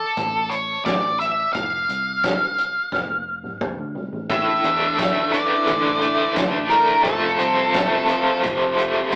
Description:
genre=psychedelic rock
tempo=87 BPM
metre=4/4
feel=straight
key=unclear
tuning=A4 = 440 Hz
part: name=octave-fuzz lead guitar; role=melody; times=0.0-8.4 s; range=A4 to F5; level=-23 LUFS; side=equal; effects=distortion, analog delay
part: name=picked electric bass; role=bass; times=0.2-9.2 s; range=F1 to E2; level=-38 LUFS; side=equal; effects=none
part: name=soft-mallet drum kit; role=drums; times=0.2-9.2 s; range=hi-hat, kick drum, snare drum, toms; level=-29 LUFS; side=equal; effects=none
part: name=ensemble organ-string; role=sustained chords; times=4.3-9.2 s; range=C4 to A5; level=-34 LUFS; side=equal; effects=ensemble chorus
part: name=overdriven electric guitar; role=riff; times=4.3-9.2 s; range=F2 to D4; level=-23 LUFS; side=equal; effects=tremolo
part: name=tambourine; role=percussion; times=5.0-9.2 s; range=none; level=-44 LUFS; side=equal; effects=none
room=wet booth ambience, RT60 0.3 s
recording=rough rehearsal-room recording, tube saturation, AM radio sound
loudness=-21 LUFS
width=mono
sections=0.0-9.2 A section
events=drum fill 2.9-4.3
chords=0.0 A5; 1.6 F5; 4.3 Asus4; 7.1 F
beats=0.17 0.86 | 1.55 2.24 2.93 3.62 | 4.31 5.00 5.68 6.38 | 7.06 7.75 8.44 9.13

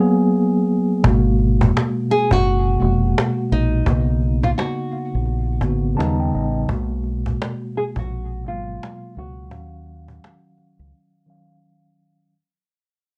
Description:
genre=lo-fi hip hop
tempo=85 BPM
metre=4/4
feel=swing 61% on 16ths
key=G# dorian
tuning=A4 = 441 Hz
part: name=nylon-string guitar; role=melody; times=0.0-11.6 s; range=D#4 to G#4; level=-27 LUFS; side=equal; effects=low-pass filter
part: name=mellow tine electric piano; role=accompaniment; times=0.0-12.4 s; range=B2 to A5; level=-23 LUFS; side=equal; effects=low-pass filter
part: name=deep dub fingered electric bass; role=bass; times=1.0-10.9 s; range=E#1 to D#2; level=-24 LUFS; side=equal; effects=none
part: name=cajon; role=drums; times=1.0-10.7 s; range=none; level=-25 LUFS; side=equal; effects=none
room=light reverb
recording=cassette tape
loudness=-20 LUFS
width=mono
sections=0.0-1.0 A section; 1.0-12.3 B section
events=break 0.0-1.0, 10.9-12.3; fade-out 1.0-12.3; filter sweep 1.0-12.3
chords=0.0 G#m9; 3.9 Bmaj9; 6.0 D#7alt; 6.7 G#m9; 9.5 D#m9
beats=0.33 | 1.04 1.75 2.45 3.16 | 3.86 4.57 5.27 5.98 | 6.69 7.39 8.10 8.80 | 9.51 10.22 10.92 11.63

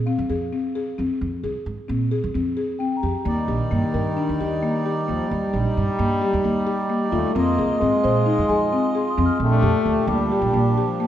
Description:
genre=contemporary instrumental, chamber music in an uneven meter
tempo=264 BPM (eighths)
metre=9/8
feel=straight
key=unclear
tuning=A4 = 441 Hz
part: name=upright bass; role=bass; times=0.0-10.7 s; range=Bb1 to Bb2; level=-24 LUFS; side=right 2 dB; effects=none
part: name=buzzing marimba with soft mallets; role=arpeggios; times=0.1-11.1 s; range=Bb3 to C5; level=-24 LUFS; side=left 3 dB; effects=none
part: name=large celesta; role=texture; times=0.1-3.6, 7.1-11.0 s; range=F5 to F6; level=-32 LUFS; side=left 4 dB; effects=none
part: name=warm French horn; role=second line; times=3.2-11.1 s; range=Eb3 to Bb3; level=-24 LUFS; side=left 2 dB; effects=none
part: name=pedal harmonium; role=sustained chords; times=3.3-11.1 s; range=Bb2 to Eb5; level=-25 LUFS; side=right 1 dB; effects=none
room=moderate scoring stage reverb, RT60 1.6 s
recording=none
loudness=-19 LUFS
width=side -11 dB against mid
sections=0.0-11.1 A section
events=none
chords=0.0 Fm; 3.3 Ebmaj7; 7.4 Fm7; 9.4 Bb6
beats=0.07 0.29 0.52 0.75 0.98 | 1.21 1.43 1.66 1.89 2.12 2.35 2.57 2.80 3.03 | 3.26 3.48 3.71 3.94 4.17 4.39 4.62 4.85 5.08 | 5.30 5.53 5.76 5.99 6.21 6.44 6.67 6.90 7.12 | 7.35 7.58 7.81 8.03 8.26 8.49 8.72 8.94 9.17 | 9.40 9.63 9.86 10.08 10.31 10.54 10.77 11.00

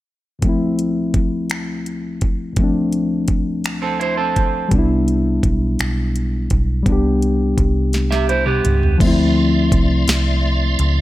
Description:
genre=slow six-eight R&B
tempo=56 BPM (dotted quarters)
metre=6/8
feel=straight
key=unclear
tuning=A4 = 440 Hz
part: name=reed electric piano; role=accompaniment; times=0.4-11.0 s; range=D2 to G4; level=-19 LUFS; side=left 2 dB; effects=none
part: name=smooth R&B drum kit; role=drums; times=0.4-11.0 s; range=crash cymbal, finger snaps, hi-hat, kick drum, snare drum, toms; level=-20 LUFS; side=equal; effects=none
part: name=electric guitar at the edge of break-up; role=second line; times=3.8-4.7, 8.1-9.0 s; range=B3 to E5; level=-20 LUFS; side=right 5 dB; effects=none
part: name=vintage muted fingered electric bass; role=bass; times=4.7-11.0 s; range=B1 to D2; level=-18 LUFS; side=equal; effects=none
part: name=tonewheel organ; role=sustained chords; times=9.0-11.0 s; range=F3 to C6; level=-24 LUFS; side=right 1 dB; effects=overdrive, chorus vibrato, slow rotary speaker
room=light reverb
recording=none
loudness=-15 LUFS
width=side -16 dB against mid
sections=0.4-9.0 A section; 9.0-11.0 B section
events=drum fill 7.9-9.0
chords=0.4 Dm9; 4.7 Cmaj7; 9.0 Dm9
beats=| 0.43 1.50 | 2.57 3.64 | 4.71 5.79 | 6.86 7.93 | 9.00 10.07

